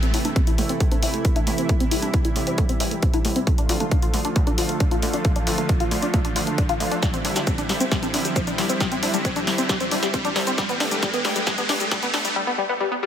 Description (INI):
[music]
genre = uplifting trance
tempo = 135 BPM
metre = 4/4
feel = straight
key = A minor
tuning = A4 = 441 Hz
[part]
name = lush unison pad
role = sustained chords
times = 0.0-12.3 s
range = C3 to G4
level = -27 LUFS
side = right 1 dB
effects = chorus, sidechain pumping
[part]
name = tight sequenced synth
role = arpeggios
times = 0.0-13.1 s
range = G3 to F4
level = -26 LUFS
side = left 2 dB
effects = chorus, phaser, sidechain pumping, dub echo
[part]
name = punchy analog drum machine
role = drums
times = 0.0-12.3 s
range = congas, hi-hat, shaker, snare drum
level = -27 LUFS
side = equal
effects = high-pass filter on hats, high-pass filter on perc, high-pass filter on snare
[part]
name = riser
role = sound effects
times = 0.0-12.4 s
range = none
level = -30 LUFS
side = right 1 dB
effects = none
[part]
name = plucky analog bass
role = bass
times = 0.1-12.3 s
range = G1 to D2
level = -34 LUFS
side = equal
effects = tube saturation, sidechain pumping, high-pass filter
[part]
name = electronic kick drum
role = drums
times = 0.4-12.0 s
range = none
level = -22 LUFS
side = equal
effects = none
[sound]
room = light reverb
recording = high-pass filter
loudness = -19 LUFS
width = side -9 dB against mid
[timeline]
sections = 0.0-13.1 A section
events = build-up 0.0-13.1; riser 0.0-12.4; filter sweep on synth arpeggio sound 0.0-13.1; filter sweep 0.0-13.1; drum fill 7.0-12.4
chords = 0.0 Am; 3.5 Dm; 7.0 Cadd9; 10.6 Gadd9